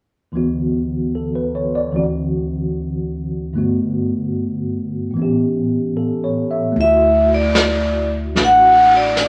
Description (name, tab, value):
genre	jazz ballad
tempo	75 BPM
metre	4/4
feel	swing 68% on 8ths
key	D major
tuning	A4 = 440 Hz
part	tine electric piano	accompaniment	0.3-9.3 s	D2 to E5	-21 LUFS	equal	none
part	vintage brush drum kit	drums	6.7-9.3 s	brushed snare drum, hi-hat, snare drum	-22 LUFS	equal	none
part	vibraphone with medium hard mallets	melody	6.8-9.3 s	D5 to F#5	-14 LUFS	equal	none
part	upright bass	bass	6.8-9.3 s	A1 to D2	-26 LUFS	equal	none
room	wet studio reverb, RT60 0.7 s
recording	none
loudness	-17 LUFS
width	mono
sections	0.3-6.8 A section; 6.8-9.3 B section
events	none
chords	0.3 D6; 1.9 D7; 3.5 Gmaj9; 5.2 A7; 6.8 Dadd9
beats	| 0.34 1.14 1.94 2.75 | 3.55 4.35 5.15 5.96 | 6.76 7.56 8.36 9.16